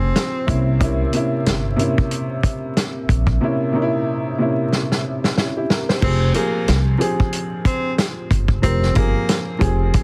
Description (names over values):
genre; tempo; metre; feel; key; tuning
hip hop, boom-bap hip-hop; 92 BPM; 4/4; swing 59% on 16ths; F harmonic minor; A4 = 440 Hz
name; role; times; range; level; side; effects
breathy tenor saxophone; melody; 0.0-0.8, 6.0-9.4 s; Bb3 to C4; -29 LUFS; equal; high-pass filter, low-pass filter, plate reverb, tape echo
dark upright piano; accompaniment; 0.0-10.0 s; C3 to C5; -24 LUFS; equal; cassette tape, high-pass filter, low-pass filter, plate reverb
upright bass; bass; 0.0-9.9 s; F1 to C2; -22 LUFS; equal; none
warm soul drum kit; drums; 0.2-10.0 s; crash cymbal, hi-hat, kick drum, snare drum; -22 LUFS; equal; soft clipping on kick
room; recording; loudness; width
light reverb; dense, heavily limited modern master, vinyl crackle; -19 LUFS; mono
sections
0.0-6.0 A section; 6.0-10.0 B section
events
drum fill 4.7-6.0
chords
0.5 C7b9; 6.0 Fmadd9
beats
0.15 | 0.81 1.46 2.11 2.76 | 3.41 4.07 4.72 5.37 | 6.02 6.67 7.33 7.98 | 8.63 9.28 9.94